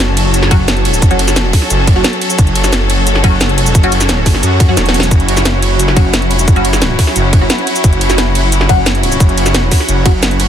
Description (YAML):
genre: dark technical drum and bass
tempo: 176 BPM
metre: 4/4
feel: straight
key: F# minor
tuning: A4 = 438 Hz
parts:
  - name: clear symphonic string section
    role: sustained chords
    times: 0.0-10.5 s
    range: F#3 to A4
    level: -19 LUFS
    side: left 1 dB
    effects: sidechain pumping
  - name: wide detuned saw bass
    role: bass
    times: 0.0-10.5 s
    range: E1 to F#2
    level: -14 LUFS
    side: equal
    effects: chorus, overdrive
  - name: drum and bass drum kit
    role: drums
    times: 0.0-10.5 s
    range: cabasa, hi-hat, ride cymbal, snare drum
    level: -15 LUFS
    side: right 1 dB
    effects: none
  - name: granular cloud pad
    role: texture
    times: 0.0-10.5 s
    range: F#4 to B5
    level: -19 LUFS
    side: equal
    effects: built-in reverb, sidechain pumping
  - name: filtered dub chord stab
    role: stabs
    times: 0.5-10.1 s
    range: F#3 to F#4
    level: -19 LUFS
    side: left 1 dB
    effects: phaser, analog chorus, tape echo
  - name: electronic kick drum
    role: drums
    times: 0.5-10.1 s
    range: none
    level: -9 LUFS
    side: equal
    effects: overdrive
room: little or no reverb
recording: dense, heavily limited modern master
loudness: -9 LUFS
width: side -9 dB against mid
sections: 0.0-10.5 A section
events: drum fill 4.8-5.1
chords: 0.0 F#m